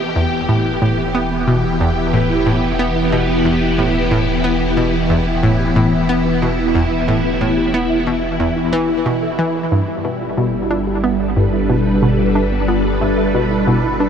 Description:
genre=ambient, sequencer-driven space music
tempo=91 BPM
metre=4/4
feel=straight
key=E minor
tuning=A4 = 439 Hz
part: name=phased string machine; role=sustained chords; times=0.0-14.1 s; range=E3 to B4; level=-17 LUFS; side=equal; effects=ensemble chorus, phaser
part: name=soft round pluck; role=arpeggios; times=0.0-14.1 s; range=B3 to E5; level=-28 LUFS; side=right 3 dB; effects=chorus, auto-pan, tape echo
part: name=round analog bass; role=bass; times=0.0-14.1 s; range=E1 to G1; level=-24 LUFS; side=equal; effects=none
part: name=analog pluck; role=riff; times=0.2-14.1 s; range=E2 to D4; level=-19 LUFS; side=equal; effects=chorus, tape echo
room=moderate huge ambient reverb, RT60 7.8 s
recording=cassette tape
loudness=-14 LUFS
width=side -7 dB against mid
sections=0.0-14.1 A section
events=fade-in on synth arpeggio sound 0.0-14.1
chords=0.0 Em; 9.7 G

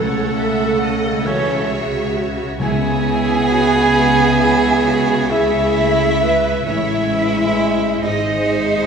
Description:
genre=cinematic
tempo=44 BPM (dotted quarters)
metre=6/8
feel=rubato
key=C# minor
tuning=A4 = 440 Hz
part: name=warm cello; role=melody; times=0.0-8.9 s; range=A3 to G#4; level=-21 LUFS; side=right 3 dB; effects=none
part: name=warm symphonic violin section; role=melody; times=0.0-8.9 s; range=A4 to G#5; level=-28 LUFS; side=equal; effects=none
part: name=mellow hollow silver concert flute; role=second line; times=0.0-8.9 s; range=A4 to G#5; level=-23 LUFS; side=equal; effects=none
part: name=warm clarinet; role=second line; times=0.0-8.9 s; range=A4 to G#5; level=-23 LUFS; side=right 1 dB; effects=none
part: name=warm symphonic violin section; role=second line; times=0.0-8.9 s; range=B4 to F#5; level=-27 LUFS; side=equal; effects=none
part: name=rich symphonic viola section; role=accompaniment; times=0.0-8.9 s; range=A3 to B#4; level=-25 LUFS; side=right 2 dB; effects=none
part: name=warm French horn section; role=sustained chords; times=0.0-8.9 s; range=C#3 to G#4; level=-21 LUFS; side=left 1 dB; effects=none
part: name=concert harp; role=arpeggios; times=0.0-8.9 s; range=G#2 to B5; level=-28 LUFS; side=left 4 dB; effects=none
part: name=clear symphonic double bass section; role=bass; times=0.0-8.9 s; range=G#1 to C#2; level=-25 LUFS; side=right 4 dB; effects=none
part: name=warm symphonic cello section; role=bass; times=0.0-8.9 s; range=G#2 to C#3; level=-26 LUFS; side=right 2 dB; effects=none
part: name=timpani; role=percussion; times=0.0-3.9 s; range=C#3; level=-26 LUFS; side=right 1 dB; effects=none
room=wet scoring stage reverb, RT60 1.6 s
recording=small room ambience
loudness=-14 LUFS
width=side -6 dB against mid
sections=0.0-8.9 A section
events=none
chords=0.0 Aadd9/C#; 2.6 C#m7; 8.0 G#

